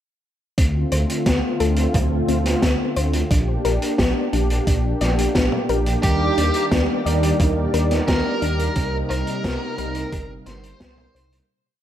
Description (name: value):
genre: synthwave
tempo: 88 BPM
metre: 4/4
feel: straight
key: D phrygian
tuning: A4 = 441 Hz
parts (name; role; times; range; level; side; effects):
- warm analog pad; sustained chords; 0.6-11.5 s; C3 to D5; -25 LUFS; equal; chorus, sidechain pumping
- soft round pluck; arpeggios; 0.6-11.4 s; C4 to D5; -29 LUFS; left 5 dB; chorus, ping-pong delay
- dark detuned saw bass; bass; 0.6-11.4 s; G1 to Eb2; -22 LUFS; equal; none
- electronic kick drum; drums; 0.6-10.9 s; none; -22 LUFS; equal; none
- raw garage drum kit; drums; 0.6-11.5 s; hi-hat, snare drum, toms; -24 LUFS; left 1 dB; gated reverb
- biting lead guitar; melody; 6.0-11.4 s; G4 to C5; -28 LUFS; equal; overdrive, digital delay
- string machine, violins; second line; 6.0-11.4 s; G4 to C5; -32 LUFS; right 1 dB; ensemble chorus, ping-pong delay
- mellow synth brass; stabs; 6.0-11.4 s; C3 to Bb4; -28 LUFS; right 3 dB; chorus, ping-pong delay
room: light reverb, small room ambience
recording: none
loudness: -18 LUFS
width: side -11 dB against mid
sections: 0.6-11.5 verse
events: fade-out 7.9-11.5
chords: 0.6 Dm7; 3.3 Bb6; 6.0 Ebmaj7; 8.8 Cm7